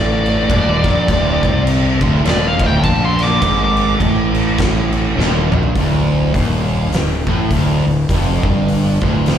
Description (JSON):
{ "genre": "stoner and doom metal", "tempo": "103 BPM", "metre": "4/4", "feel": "swing 59% on 8ths", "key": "unclear", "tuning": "A4 = 440 Hz", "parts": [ { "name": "fuzz lead guitar", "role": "melody", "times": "0.0-3.9 s", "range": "D5 to D6", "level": "-20 LUFS", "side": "equal", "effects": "distortion, slapback echo, ping-pong delay" }, { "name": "fuzz guitar", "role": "riff", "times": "0.0-9.4 s", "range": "D2 to C3", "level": "-18 LUFS", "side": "equal", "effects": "distortion" }, { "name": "fuzz fingered electric bass", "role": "bass", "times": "0.0-9.4 s", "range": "D1 to C2", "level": "-18 LUFS", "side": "equal", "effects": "overdrive" }, { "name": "oversized low-tuned drum kit", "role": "drums", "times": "0.3-9.4 s", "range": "crash cymbal, hi-hat, kick drum, snare drum, toms", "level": "-19 LUFS", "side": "equal", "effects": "none" } ], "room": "studio ambience", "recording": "live gig heard through the venue's PA, recital hall reverb", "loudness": "-13 LUFS", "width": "side -9 dB against mid", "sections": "0.0-5.7 A section; 5.7-9.4 B section", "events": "lead electric guitar solo 0.0-5.7; drum fill 5.2-5.7", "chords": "0.0 D5; 5.7 Dm" }